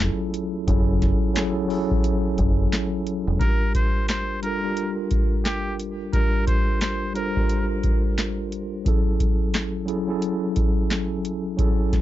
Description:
hip hop, boom-bap hip-hop; 88 BPM; 4/4; swing 62% on 16ths; A4 = 440 Hz
mellow tine electric piano; accompaniment; 0.0-12.0 s; F#3 to C5; -25 LUFS; equal; medium stereo tremolo, cassette tape, high-pass filter, low-pass filter
deep dub fingered electric bass; bass; 0.0-3.4 s; E1 to F#1; -23 LUFS; equal
booming analog drum machine; drums; 0.0-12.0 s; handclaps, hi-hat, kick drum, snare drum; -23 LUFS; equal
trumpet with straight mute; melody; 3.4-7.7 s; G4 to C5; -30 LUFS; equal; high-pass filter, low-pass filter, digital delay
little or no reverb; dark, warm production, nothing above 7.6 kHz; -21 LUFS; side -14 dB against mid
0.0-3.4 A section; 3.4-12.0 B section
0.0 F#m7; 3.4 Gm7; 8.9 F#m7

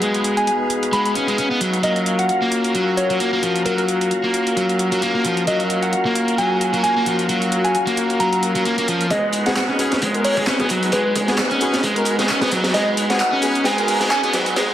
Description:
breakbeat, breaks; 132 BPM; 4/4; swing 56% on 16ths; G# dorian; A4 = 440 Hz
percussive tonewheel organ; sustained chords; 0.0-14.7 s; G#3 to E#5; -26 LUFS; right 1 dB; overdrive, fast rotary speaker, vintage 12-bit sampler grit, sidechain pumping
crunchy overdriven guitar; riff; 0.0-14.7 s; E#3 to C#4; -21 LUFS; equal; low-pass filter, tape echo
clear brass ensemble; stabs; 0.0-14.7 s; A#3 to A#4; -23 LUFS; left 2 dB; low-pass filter, tape echo
punchy analog drum machine; drums; 0.0-14.7 s; handclaps, hi-hat; -27 LUFS; right 1 dB
soft struck synth lead; melody; 0.4-14.3 s; A#4 to B5; -22 LUFS; right 1 dB; chorus, old record sound, tape echo
crunchy breakbeat drum kit; drums; 9.1-14.7 s; hi-hat, kick drum, snare drum; -23 LUFS; equal; high-pass filter on kick, high-pass filter on hats, high-pass filter on snare, high-pass filter on room
wet digital room reverb, RT60 1.1 s, small room ambience; dense, heavily limited modern master, vinyl crackle, high-pass filter; -16 LUFS; side -11 dB against mid
0.0-9.1 A section; 9.1-14.7 B section
build-up 9.1-14.7; filter sweep on overdriven electric guitar 9.1-14.7; drum fill 12.7-14.7
0.0 G#m7; 1.8 F#maj7; 9.1 G#m7

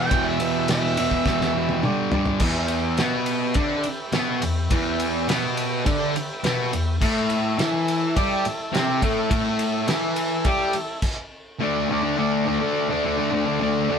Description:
garage rock duo or trio; 104 BPM; 4/4; straight; E minor; A4 = 440 Hz
mellow harmonica; melody; 0.0-1.8 s; E5 to G5; -25 LUFS; right 5 dB; overdrive
combo organ; sustained chords; 0.0-11.0 s; E4 to E5; -32 LUFS; right 1 dB
fuzz guitar; riff; 0.0-14.0 s; E2 to G4; -22 LUFS; equal; distortion
cloth-damped thuddy drum kit; drums; 0.1-11.2 s; crash cymbal, kick drum, ride cymbal, snare drum, toms; -26 LUFS; equal
moderate studio reverb, RT60 0.8 s; band playing live in one room; -20 LUFS; side -7 dB against mid
0.0-2.4 A section; 2.4-11.6 B section; 11.6-14.0 C section
harmonica solo 0.0-2.4; drum fill 1.3-2.4; stop 11.0-11.6
0.0 Em; 1.8 G5; 2.4 Em; 7.0 A5; 11.6 D5

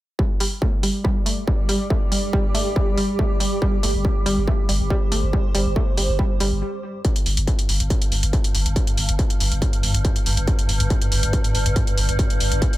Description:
driving peak-time techno; 140 BPM; 4/4; straight; A4 = 443 Hz
analog pluck; riff; 0.2-6.4 s; G3 to A3; -27 LUFS; right 2 dB; chorus, sidechain pumping, tape echo
electronic kick drum; drums; 0.2-12.7 s; -21 LUFS; equal; distortion
granular cloud pad; texture; 0.9-12.8 s; G3 to D6; -28 LUFS; right 1 dB; built-in reverb, sidechain pumping
electronic hi-hat; drums; 0.4-12.8 s; -26 LUFS; right 1 dB; sidechain pumping on hats
saturated sub bass; bass; 3.8-12.6 s; G1; -23 LUFS; equal; overdrive, sidechain pumping, low-pass filter
swarming drone; drone; 7.4-12.8 s; G2; -26 LUFS; equal; built-in reverb, sidechain pumping
little or no reverb; -18 LUFS; side -16 dB against mid
0.2-7.0 A section; 7.0-12.8 B section
stop 6.6-7.0
0.2 G5

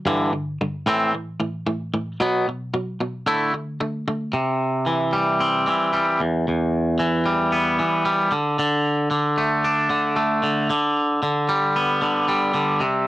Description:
rock; 113 BPM; 4/4; straight; G major; A4 = 440 Hz
twangy electric guitar; solo; 0.0-13.1 s; E2 to E4; -19 LUFS; equal; cassette tape
light reverb; home recording on cassette; -19 LUFS; side -15 dB against mid
0.0-4.3 A section; 4.3-13.1 B section
0.1 G5; 0.9 Am; 2.2 B5; 3.3 Dsus2; 4.3 C; 6.2 Em; 8.3 D5; 10.7 G/D

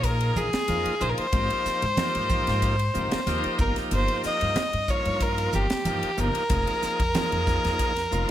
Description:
electric jazz fusion; 93 BPM; 4/4; straight; Ab major; A4 = 440 Hz
rich violin; melody; 0.0-8.3 s; G4 to Eb5; -26 LUFS; equal; slapback echo
bright tonewheel organ; accompaniment; 0.0-8.3 s; F3 to Ab4; -30 LUFS; equal; slow rotary speaker, overdrive
upright bass; bass; 0.0-8.3 s; F1 to Bb2; -28 LUFS; equal
crisp fusion drum kit; drums; 0.0-8.3 s; hi-hat, kick drum, ride cymbal, snare drum; -30 LUFS; equal
congas; percussion; 0.0-7.9 s; -32 LUFS; right 2 dB
light reverb, studio ambience; -22 LUFS; side -12 dB against mid
0.0-8.3 A section
0.0 Bb5; 1.3 Abmaj9; 3.6 Ebadd9/G; 6.5 Fm7

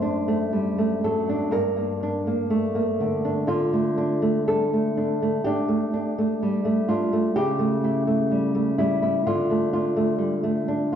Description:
romantic piece for solo classical guitar; 62 BPM; 4/4; rubato; A4 = 440 Hz
nylon-string guitar; solo; 0.0-11.0 s; F#2 to C5; -21 LUFS; equal; analog delay
wet recital hall reverb, RT60 1.5 s; heard from further back in the room; -21 LUFS; side -9 dB against mid
0.0-11.0 A section
0.0 D7/F#; 1.5 Gm; 3.5 Dm; 7.4 A7/C#; 9.3 Dm

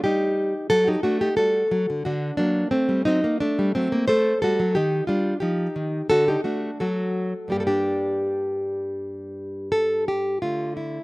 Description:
classical, baroque-style dance for nylon-string guitar; 81-92 BPM; 4/4; rubato; G minor; A4 = 440 Hz
nylon-string guitar; solo; 0.0-11.0 s; G2 to C5; -21 LUFS; equal; slapback echo
light reverb; recorded outdoors, with no room sound; -21 LUFS; side -22 dB against mid
0.0-10.4 A section
0.0 Eb; 0.7 D/F#; 2.1 D7; 4.8 Eb; 6.1 D; 7.5 Gm; 10.4 Dm

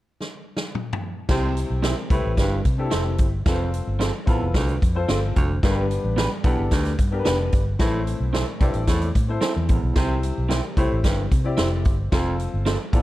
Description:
uptempo 1960s-style soul; 111 BPM; 4/4; straight; A4 = 440 Hz
swinging big-band drum kit; drums; 0.2-13.0 s; crash cymbal, hi-hat, kick drum, snare drum, toms; -23 LUFS; equal
clear concert grand piano; accompaniment; 1.3-13.0 s; G2 to D5; -28 LUFS; left 4 dB
warm baritone saxophone; riff; 1.3-13.0 s; D2 to C3; -29 LUFS; right 3 dB
vintage muted fingered electric bass; bass; 1.3-13.0 s; F1 to C3; -24 LUFS; equal
electric guitar through a small old amp; stabs; 1.8-12.8 s; B3 to C5; -30 LUFS; right 4 dB; analog delay
light reverb, small room ambience; dark, warm production; -20 LUFS; side -16 dB against mid
0.0-1.3 A section; 1.3-13.0 B section
drum fill 0.2-1.3
0.0 N.C.; 1.3 F; 5.6 G; 7.8 Am; 10.0 C; 12.1 F

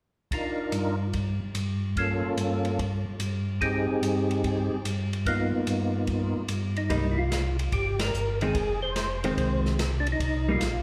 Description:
soul jazz organ trio; 146 BPM; 4/4; swing 67% on 8ths; C minor; A4 = 440 Hz
percussive tonewheel organ; melody; 0.3-10.8 s; Bb3 to C5; -31 LUFS; equal; slow rotary speaker, chorus vibrato, slapback echo
open jazz drum kit; drums; 0.3-10.7 s; hi-hat, kick drum, ride cymbal, snare drum; -37 LUFS; equal
mellow tonewheel organ; bass; 0.7-10.8 s; F1 to G2; -31 LUFS; equal; chorus vibrato, slow rotary speaker
vintage hollow-body jazz guitar; accompaniment; 6.9-10.6 s; Eb3 to Eb4; -32 LUFS; equal; slapback echo
light reverb, small room ambience; live gig heard through the venue's PA, recital hall reverb; -28 LUFS; mono
0.3-6.9 A section; 6.9-10.8 B section
band accent 7.9
0.3 Gm7; 2.8 N.C.; 3.6 Abmaj7/G; 6.9 Cm7; 8.6 Fm7; 10.2 Cm7

